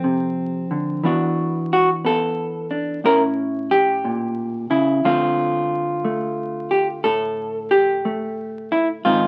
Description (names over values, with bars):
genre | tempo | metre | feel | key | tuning
solo jazz | 60 BPM | 4/4 | swing 66% on 8ths | unclear | A4 = 440 Hz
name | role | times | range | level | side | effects
hollow-body jazz guitar | solo | 0.0-9.3 s | F2 to Bb4 | -21 LUFS | equal | none
room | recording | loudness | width
moderate studio reverb, RT60 0.7 s | very old 78 rpm record, vinyl crackle | -21 LUFS | mono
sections
0.0-9.3 A section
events
none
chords
0.0 F; 1.0 E9sus4; 3.0 A7b9; 5.0 Dm7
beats
0.03 | 1.03 2.03 3.03 4.04 | 5.04 6.04 7.04 8.04 | 9.04